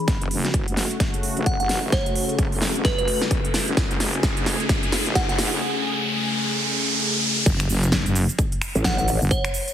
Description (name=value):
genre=bass house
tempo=130 BPM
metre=4/4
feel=swing 59% on 16ths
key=F# minor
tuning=A4 = 438 Hz
part: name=sweeping resonant pad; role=sustained chords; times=0.0-7.4 s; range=C#3 to G#4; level=-28 LUFS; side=left 2 dB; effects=chorus, sidechain pumping
part: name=wobble bass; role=bass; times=0.1-9.3 s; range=E1 to A1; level=-26 LUFS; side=equal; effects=chorus, overdrive, sidechain pumping, high-pass filter
part: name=big-room dance drum kit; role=drums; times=0.1-9.7 s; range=crash cymbal, finger snaps, hi-hat, shaker, snare drum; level=-25 LUFS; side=equal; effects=high-pass filter on hats, small room reverb, high-pass filter on snare, high-pass filter on cymbals, high-pass filter on perc
part: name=electronic kick drum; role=drums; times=0.1-9.4 s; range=none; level=-24 LUFS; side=equal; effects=small room reverb
part: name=riser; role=sound effects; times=1.3-7.5 s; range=none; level=-26 LUFS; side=right 1 dB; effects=none
part: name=glassy synth bell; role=melody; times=1.5-5.4, 8.8-9.4 s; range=B4 to F#5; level=-27 LUFS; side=right 1 dB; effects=chorus, ping-pong delay
part: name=growl bass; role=bass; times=8.8-9.2 s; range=A1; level=-22 LUFS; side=equal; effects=chorus, overdrive, sidechain pumping
room=moderate digital room reverb, RT60 1.2 s, digital ambience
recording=heavily compressed radio sound, multiband compression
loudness=-20 LUFS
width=side -10 dB against mid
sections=0.1-7.5 A section; 7.5-9.7 B section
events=build-up 0.1-7.5; drum fill 0.1-5.6; riser 1.3-7.5; drop 7.5-9.7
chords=0.1 F#m